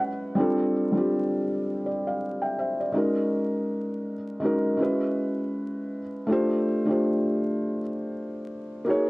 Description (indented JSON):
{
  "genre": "hip hop",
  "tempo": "81 BPM",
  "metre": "4/4",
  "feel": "swing 60% on 16ths",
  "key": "unclear",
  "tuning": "A4 = 444 Hz",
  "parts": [
    { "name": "felt-muted upright piano", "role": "solo", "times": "0.0-9.1 s", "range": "G3 to G5", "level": "-24 LUFS", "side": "equal", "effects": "cassette tape, low-pass filter" }
  ],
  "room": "wet studio reverb, RT60 0.5 s",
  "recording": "vinyl crackle",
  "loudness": "-24 LUFS",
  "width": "side -23 dB against mid",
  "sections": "0.0-9.1 A section",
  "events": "felt piano fill 0.0-0.3",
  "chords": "0.3 G9sus4; 2.9 Ab9sus4; 4.8 F#9sus4; 6.3 G9sus4"
}